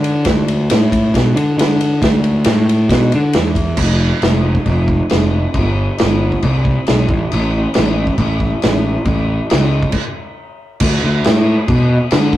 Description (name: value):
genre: garage rock duo or trio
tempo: 136 BPM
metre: 4/4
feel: straight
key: unclear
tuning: A4 = 440 Hz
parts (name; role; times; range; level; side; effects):
- fuzz picked electric bass; bass; 0.0-12.4 s; F1 to D3; -14 LUFS; equal; overdrive
- vintage drum kit; drums; 0.0-12.4 s; crash cymbal, kick drum, ride cymbal, snare drum; -16 LUFS; equal; none
room: light reverb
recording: rough rehearsal-room recording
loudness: -12 LUFS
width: side -14 dB against mid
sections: 0.0-3.8 A section; 3.8-10.8 B section; 10.8-12.4 C section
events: stop 9.9-10.8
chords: none